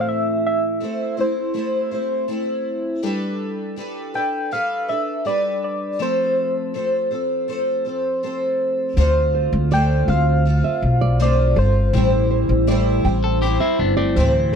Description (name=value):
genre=acoustic pop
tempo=81 BPM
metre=4/4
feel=straight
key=unclear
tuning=A4 = 440 Hz
part: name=soft struck synth lead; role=melody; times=0.0-13.0 s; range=C5 to G5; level=-23 LUFS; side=left 1 dB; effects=chorus, tremolo
part: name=picked twelve-string acoustic guitar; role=accompaniment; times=0.0-14.5 s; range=A2 to C5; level=-21 LUFS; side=equal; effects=double-tracked left and right
part: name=upright bass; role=bass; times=9.0-14.6 s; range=G1 to D2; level=-18 LUFS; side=equal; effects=none
part: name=nylon-string guitar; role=arpeggios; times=9.3-14.6 s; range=A4 to G5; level=-27 LUFS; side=right 8 dB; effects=none
part: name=electric guitar at the edge of break-up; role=second line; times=13.2-14.6 s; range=A3 to A4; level=-25 LUFS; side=left 6 dB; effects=none
room=little or no reverb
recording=dry, close 1970s-style studio recording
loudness=-18 LUFS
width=side -7 dB against mid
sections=0.0-9.0 A section; 9.0-14.6 B section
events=none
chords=0.0 Am; 3.0 Gadd9; 6.0 F; 9.0 Dm7; 11.9 Am7